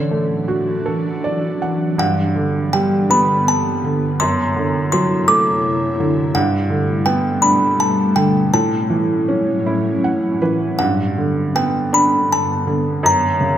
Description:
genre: children's music, lullaby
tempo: 54 BPM (dotted quarters)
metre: 6/8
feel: rubato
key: unclear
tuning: A4 = 440 Hz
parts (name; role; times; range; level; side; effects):
- music box; melody; 0.0-13.6 s; D5 to D6; -18 LUFS; equal; none
- felt-muted upright piano; accompaniment; 0.0-13.6 s; F#2 to F#5; -18 LUFS; right 2 dB; none
- ethereal airy pad; sustained chords; 0.0-13.6 s; F#2 to E4; -22 LUFS; left 1 dB; ensemble chorus, built-in reverb
room: wet recital hall reverb, RT60 1.7 s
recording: none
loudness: -15 LUFS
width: side -10 dB against mid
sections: 0.0-2.0 A section; 2.0-13.6 B section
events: felt piano fill 0.9-2.0, 9.7-10.8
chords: 0.0 Dadd9; 2.0 G; 4.2 D7/F#; 6.4 Gadd9; 8.5 A6; 10.8 G; 13.0 F#7

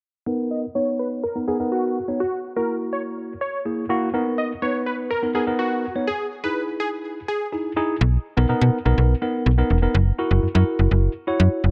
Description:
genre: pop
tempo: 124 BPM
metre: 4/4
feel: straight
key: B major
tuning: A4 = 441 Hz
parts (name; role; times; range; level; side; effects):
- tine electric piano; accompaniment; 0.3-11.7 s; A#3 to C#5; -26 LUFS; equal; overdrive, low-pass filter
- plucky unison lead; melody; 0.5-7.5 s; F#4 to D#5; -28 LUFS; equal; low-pass filter
- slap-like FM bass; bass; 8.0-11.7 s; E1 to B2; -19 LUFS; equal; none
room: light reverb, digital ambience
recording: none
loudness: -22 LUFS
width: mono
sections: 0.3-8.0 A section; 8.0-11.7 B section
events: filter sweep 0.3-8.0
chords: 0.3 Bmaj7; 2.2 F#7; 4.1 Bmaj7; 6.1 Emaj7; 8.0 Bmaj7; 9.9 F#7

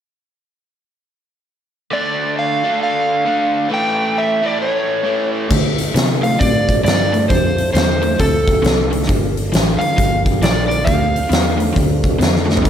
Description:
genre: blues rock power trio and southern rock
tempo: 134 BPM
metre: 4/4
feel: swing 62% on 8ths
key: D minor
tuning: A4 = 441 Hz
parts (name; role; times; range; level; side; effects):
- overdriven slide guitar; melody; 1.9-11.5 s; A4 to G5; -18 LUFS; right 1 dB; slapback echo
- overdriven electric guitar; riff; 1.9-12.7 s; G2 to D4; -21 LUFS; equal; slapback echo
- percussive tonewheel organ; sustained chords; 5.5-12.7 s; Bb3 to Bb4; -29 LUFS; right 3 dB; none
- vintage muted fingered electric bass; bass; 5.5-12.7 s; G1 to D3; -20 LUFS; equal; none
- huge arena drum kit; drums; 5.5-12.7 s; crash cymbal, hi-hat, kick drum, snare drum, toms; -16 LUFS; equal; none
room: moderate recital hall reverb, RT60 1.4 s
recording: big arena sound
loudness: -14 LUFS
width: side -9 dB against mid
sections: 1.9-5.5 A section; 5.5-12.7 B section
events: drum fill 12.4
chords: 1.9 Dm; 3.7 A7; 5.5 Dm7; 9.1 Gm7; 10.9 Dm7

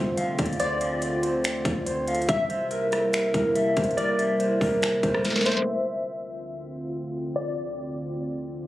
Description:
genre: hip hop, atmospheric cloud-rap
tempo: 142 BPM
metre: 4/4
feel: half-time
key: D minor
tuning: A4 = 440 Hz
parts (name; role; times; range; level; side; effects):
- dark analog pad; sustained chords; 0.0-8.7 s; D2 to F4; -31 LUFS; equal; chorus, sidechain pumping
- mellow electric guitar; arpeggios; 0.0-5.7 s; F4 to F5; -26 LUFS; equal; low-pass filter, digital delay
- soft 808-style bass; bass; 0.0-5.4 s; C2 to D2; -34 LUFS; equal; none
- trap drum kit; drums; 0.2-5.7 s; finger snaps, hi-hat, kick drum, rim click, snare drum; -27 LUFS; equal; none
- glassy wavetable pluck; melody; 0.6-8.2 s; C5 to E5; -30 LUFS; left 1 dB; chorus, low-pass filter, digital delay
room: moderate lush hall reverb, RT60 1.6 s, digital ambience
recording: recorded on a phone in the room, club reverb, low-pass filter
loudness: -23 LUFS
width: side -15 dB against mid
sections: 0.0-5.7 A section; 5.7-8.7 B section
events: drum fill 5.2-5.7; filter sweep 5.7-8.7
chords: 0.0 Dm7; 2.3 C7; 5.7 Dm7

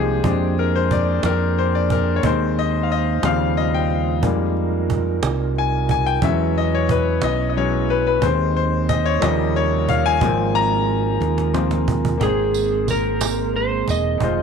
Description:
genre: slow gospel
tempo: 60 BPM (dotted quarters)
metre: 6/8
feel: straight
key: Ab major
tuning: A4 = 440 Hz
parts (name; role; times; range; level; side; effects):
- bright grand piano; accompaniment; 0.0-14.4 s; Ab2 to Bb5; -21 LUFS; left 10 dB; none
- mellow tonewheel organ; sustained chords; 0.0-14.4 s; Db3 to G5; -25 LUFS; right 11 dB; fast rotary speaker, chorus vibrato
- fingered electric bass; bass; 0.0-14.4 s; Fb1 to F2; -22 LUFS; right 1 dB; none
- cajon; drums; 0.2-14.4 s; none; -25 LUFS; right 5 dB; none
- electric slide guitar; melody; 12.2-14.4 s; Ab4 to Eb5; -21 LUFS; right 2 dB; none
- tambourine; percussion; 12.5-14.2 s; none; -30 LUFS; right 15 dB; none
room: moderate plate reverb, RT60 1.5 s, small room ambience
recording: 1960s-style stereo with parts hard left and right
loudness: -17 LUFS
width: side -6 dB against mid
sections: 0.0-12.2 A section; 12.2-14.4 B section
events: grand piano solo 0.0-12.2; drum fill 11.2-12.2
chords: 0.2 Bb13/F; 2.2 Ab/Eb; 3.2 Eb13; 4.2 Fm11; 6.2 E6; 8.2 Ab/Eb; 9.2 Eb13; 10.2 Ab69; 12.2 Abmaj9

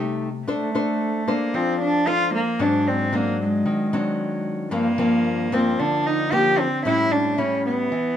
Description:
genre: bossa nova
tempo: 113 BPM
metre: 4/4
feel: straight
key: unclear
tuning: A4 = 438 Hz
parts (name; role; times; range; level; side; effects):
- nylon-string guitar; accompaniment; 0.0-8.2 s; G2 to C5; -23 LUFS; left 2 dB; none
- warm cello; melody; 0.5-8.2 s; Ab3 to G4; -22 LUFS; right 1 dB; none
room: moderate large studio reverb, RT60 0.9 s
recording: minimal, uncompressed stereo recording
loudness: -19 LUFS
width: side -10 dB against mid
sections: 0.5-8.2 A section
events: none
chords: 0.5 F6; 2.6 Ab7#11; 4.7 Gm7; 6.8 A7

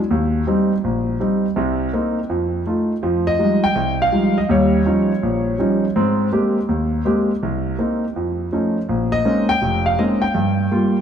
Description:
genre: solo jazz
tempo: 164 BPM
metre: 4/4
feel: swing 64% on 8ths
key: F minor from 3.0 s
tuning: A4 = 438 Hz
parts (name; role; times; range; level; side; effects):
- warm concert grand piano; solo; 0.1-11.0 s; F1 to G5; -16 LUFS; equal; none
room: wet plate reverb, RT60 3.7 s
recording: heard from further back in the room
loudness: -16 LUFS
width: side -8 dB against mid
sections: 0.0-3.0 A section; 3.0-11.0 B section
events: none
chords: 0.1 Eb6; 1.6 Cm7; 2.3 F7; 3.0 Fm9; 4.5 Eb9; 6.0 Abmaj9; 7.4 Cm7; 8.1 Faug7; 8.9 Bbm11; 10.3 Gm7

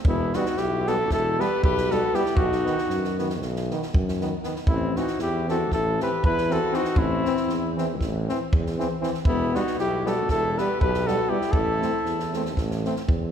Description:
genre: balkan folk, Balkan brass band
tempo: 236 BPM (eighths)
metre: 9/8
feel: straight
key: A dorian sharp4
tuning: A4 = 440 Hz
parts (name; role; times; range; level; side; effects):
- clear tuba; bass; 0.0-13.3 s; E1 to F#2; -29 LUFS; right 1 dB; none
- compact cocktail drum kit; percussion; 0.0-13.2 s; kick drum, snare drum; -27 LUFS; equal; none
- warm flugelhorn; melody; 0.1-12.3 s; E4 to B4; -26 LUFS; equal; none
- bright alto saxophone; second line; 0.1-12.3 s; B3 to G4; -29 LUFS; left 4 dB; none
- brilliant trombone; accompaniment; 0.3-12.9 s; B3 to C4; -34 LUFS; left 6 dB; none
- clear euphonium; accompaniment; 0.3-12.9 s; D#3 to A3; -33 LUFS; right 5 dB; none
room: moderate concert hall reverb, RT60 2.1 s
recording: recorded in a church or concert hall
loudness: -22 LUFS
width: side -8 dB against mid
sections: 0.0-13.3 A section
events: none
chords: 0.1 Em; 2.4 B; 4.7 Am; 9.2 Em; 11.5 Am

